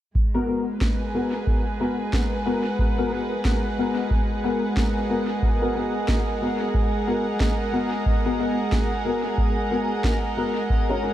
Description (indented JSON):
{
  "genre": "ambient dub",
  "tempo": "91 BPM",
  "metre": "4/4",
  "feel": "swing 58% on 16ths",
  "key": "G# minor",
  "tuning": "A4 = 440 Hz",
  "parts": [
    { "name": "drifting glass-harmonics texture", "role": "texture", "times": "0.7-11.1 s", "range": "D#5", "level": "-37 LUFS", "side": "right 7 dB", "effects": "chorus, built-in reverb" },
    { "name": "dark studio string section", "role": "sustained chords", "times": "0.2-11.1 s", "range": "G#3 to F#5", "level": "-27 LUFS", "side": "right 1 dB", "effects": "none" },
    { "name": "electronic kick drum", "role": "drums", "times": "0.2-10.9 s", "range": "none", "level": "-24 LUFS", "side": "equal", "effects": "none" },
    { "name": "dark upright piano", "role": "stabs", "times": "0.3-11.1 s", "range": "B3 to A#4", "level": "-26 LUFS", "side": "left 2 dB", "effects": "ensemble chorus, dub echo" },
    { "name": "electronic snare drum", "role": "drums", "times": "0.8-10.2 s", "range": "none", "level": "-34 LUFS", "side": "equal", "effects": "dub echo" }
  ],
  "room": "moderate huge ambient reverb, RT60 9.2 s",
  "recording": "dreamy mix soaked in reverb",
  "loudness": "-21 LUFS",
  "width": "side -12 dB against mid",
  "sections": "0.2-11.1 A section",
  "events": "none",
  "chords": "0.2 G#m7"
}